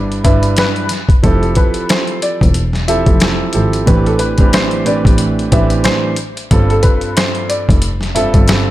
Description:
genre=hip hop, boom-bap hip-hop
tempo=91 BPM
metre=4/4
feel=swing 56% on 16ths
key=A minor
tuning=A4 = 440 Hz
part: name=dark baby grand piano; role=accompaniment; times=0.0-8.7 s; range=G2 to B4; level=-17 LUFS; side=right 3 dB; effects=cassette tape
part: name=clear double bass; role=bass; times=0.0-8.5 s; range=E1 to A1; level=-16 LUFS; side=equal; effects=none
part: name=boom bap sampler-style drum kit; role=drums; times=0.1-8.7 s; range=hi-hat, kick drum, snare drum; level=-14 LUFS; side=equal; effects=none
part: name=warm upright piano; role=melody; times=0.2-8.3 s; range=A4 to E5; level=-20 LUFS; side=left 1 dB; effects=ping-pong delay
part: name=finger snaps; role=percussion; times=0.6-8.7 s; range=none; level=-27 LUFS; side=left 6 dB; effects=none
room=studio ambience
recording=none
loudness=-11 LUFS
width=side -15 dB against mid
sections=0.0-8.7 A section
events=none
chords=0.0 Em7/G; 1.2 Fmaj7; 3.9 Am11; 6.5 G9sus4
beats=0.58 | 1.24 1.90 2.55 3.21 | 3.87 4.53 5.19 5.85 | 6.51 7.17 7.83 8.49

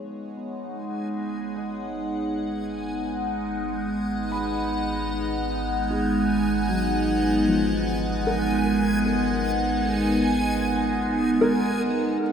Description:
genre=ambient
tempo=76 BPM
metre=4/4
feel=straight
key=G# dorian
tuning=A4 = 440 Hz
part: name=evolving wavetable pad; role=sustained chords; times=0.0-12.3 s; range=G#3 to F#5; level=-23 LUFS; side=right 1 dB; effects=phaser, built-in reverb
part: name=round analog bass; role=bass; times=0.0-12.2 s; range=G#1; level=-34 LUFS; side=left 1 dB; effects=none
part: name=backwards swelling texture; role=texture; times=0.9-12.3 s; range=G#5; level=-34 LUFS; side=right 2 dB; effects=built-in reverb
part: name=felt-muted upright piano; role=arpeggios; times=0.4-12.3 s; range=E#3 to B5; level=-32 LUFS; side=equal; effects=diffuse ambient delay
room=wet cathedral reverb, RT60 5.4 s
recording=in a vast, echoing space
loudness=-22 LUFS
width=side -8 dB against mid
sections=0.0-12.2 A section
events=fade-in on felt piano 0.0-12.2; fade-in on analog synth bass 0.0-12.2; fade-in on synth texture 0.0-12.2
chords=0.0 G#m7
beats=0.37 1.16 1.95 | 2.74 3.52 4.32 5.10 | 5.89 6.68 7.47 8.26 | 9.05 9.84 10.63 11.42 | 12.21

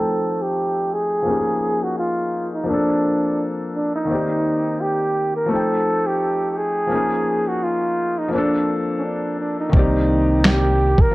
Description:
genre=lo-fi hip hop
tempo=85 BPM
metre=4/4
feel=swing 56% on 16ths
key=C dorian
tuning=A4 = 441 Hz
part: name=breathy flugelhorn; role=melody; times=0.0-11.1 s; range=Db4 to Bb4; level=-21 LUFS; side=right 1 dB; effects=low-pass filter, tape echo
part: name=felt-muted upright piano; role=accompaniment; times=0.0-11.1 s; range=Eb3 to G5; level=-23 LUFS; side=left 2 dB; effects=low-pass filter
part: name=smooth synth bass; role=bass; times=9.7-11.0 s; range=C2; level=-19 LUFS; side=equal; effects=none
part: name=dusty soul sampler-style drum kit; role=drums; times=9.7-11.1 s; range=finger snaps, kick drum, snare drum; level=-15 LUFS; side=equal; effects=none
room=light reverb, small room ambience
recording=none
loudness=-18 LUFS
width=side -19 dB against mid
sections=0.0-9.7 A section; 9.7-11.1 B section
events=filter sweep 0.0-9.7; hi-hats muted 9.7-11.1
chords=0.0 F9; 1.3 Db69/F; 2.7 Bbmaj9; 4.1 Cm9; 5.5 F9; 6.9 Db69/F; 8.3 Bbmaj9; 9.7 Cm9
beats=0.55 | 1.26 1.97 2.67 3.38 | 4.08 4.79 5.49 6.20 | 6.91 7.61 8.32 9.02 | 9.73 10.44 11.14

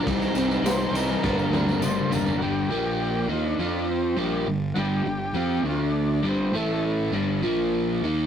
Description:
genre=garage rock duo or trio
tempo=102 BPM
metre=4/4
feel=straight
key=G minor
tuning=A4 = 439 Hz
part: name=overdriven combo organ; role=melody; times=0.0-6.8 s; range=G3 to C5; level=-31 LUFS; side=left 1 dB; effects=none
part: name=overdriven electric guitar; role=riff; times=0.0-8.3 s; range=G2 to F4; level=-24 LUFS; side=equal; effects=none
part: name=fuzz fingered electric bass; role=bass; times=0.1-8.3 s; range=G1 to F2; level=-30 LUFS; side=equal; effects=overdrive, tube saturation
part: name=crunchy breakbeat drum kit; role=drums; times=0.1-2.4 s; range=kick drum, ride cymbal, snare drum, toms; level=-29 LUFS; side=equal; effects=none
part: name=tambourine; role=percussion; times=0.1-2.3 s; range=none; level=-43 LUFS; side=left 6 dB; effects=none
room=moderate stone room reverb, RT60 1.1 s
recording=rough rehearsal-room recording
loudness=-22 LUFS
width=side -8 dB against mid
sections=0.0-2.4 A section; 2.4-8.3 B section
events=drum fill 1.2-2.4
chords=0.1 Cm; 1.2 Gm; 2.4 G5; 2.7 Bb5; 3.3 Bbadd11/Eb; 3.6 F5; 4.2 Gm; 5.7 D5; 6.3 G5; 6.5 A5; 7.1 G5; 7.4 Bb5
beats=| 0.06 0.65 1.24 1.82 | 2.41 3.00 3.59 4.18 | 4.77 5.36 5.95 6.55 | 7.14 7.73

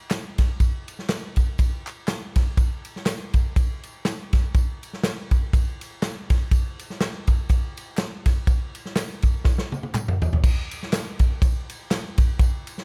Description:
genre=gospel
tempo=122 BPM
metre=4/4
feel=swing 56% on 8ths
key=none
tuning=none
part: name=natural country drum kit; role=drums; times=0.1-12.8 s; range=crash cymbal, kick drum, ride cymbal, snare drum, toms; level=-24 LUFS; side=equal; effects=none
part: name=handclaps and tambourine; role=percussion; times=0.1-12.8 s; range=none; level=-42 LUFS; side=equal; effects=none
room=little or no reverb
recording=none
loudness=-24 LUFS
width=mono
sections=0.0-10.4 A section; 10.4-12.8 A section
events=drum fill 9.5-10.4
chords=none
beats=0.11 | 0.60 1.09 1.59 2.08 | 2.58 3.07 3.56 4.05 | 4.54 5.04 5.53 6.02 | 6.51 7.00 7.50 7.99 | 8.48 8.97 9.46 9.95 | 10.44 10.93 11.42 11.91 | 12.39

